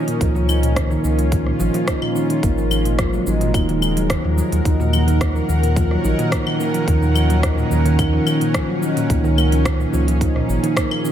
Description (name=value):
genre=organic downtempo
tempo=108 BPM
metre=4/4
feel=straight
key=Eb minor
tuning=A4 = 440 Hz
part: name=bowed-like drone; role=sustained chords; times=0.0-11.1 s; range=Eb3 to Gb5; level=-24 LUFS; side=left 1 dB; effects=built-in reverb, sidechain pumping
part: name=handpan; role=arpeggios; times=0.0-11.1 s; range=Bb2 to Eb4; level=-20 LUFS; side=right 1 dB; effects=tape echo
part: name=quartz singing bowl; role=texture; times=0.0-11.1 s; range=Bb4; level=-42 LUFS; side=left 7 dB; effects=none
part: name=organic electronic drum kit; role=drums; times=0.1-11.1 s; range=cabasa, claves, hi-hat, rim click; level=-26 LUFS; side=left 1 dB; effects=none
part: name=warm sub bass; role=bass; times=0.2-10.6 s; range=Eb1 to Eb2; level=-19 LUFS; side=equal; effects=none
part: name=electronic kick drum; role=drums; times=0.2-10.9 s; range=none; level=-22 LUFS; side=equal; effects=none
room=light reverb, digital ambience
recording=echo-heavy mix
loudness=-16 LUFS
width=side -10 dB against mid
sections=0.0-11.1 A section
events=none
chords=0.2 Db; 2.4 Absus2; 4.7 Ebm7; 9.1 Db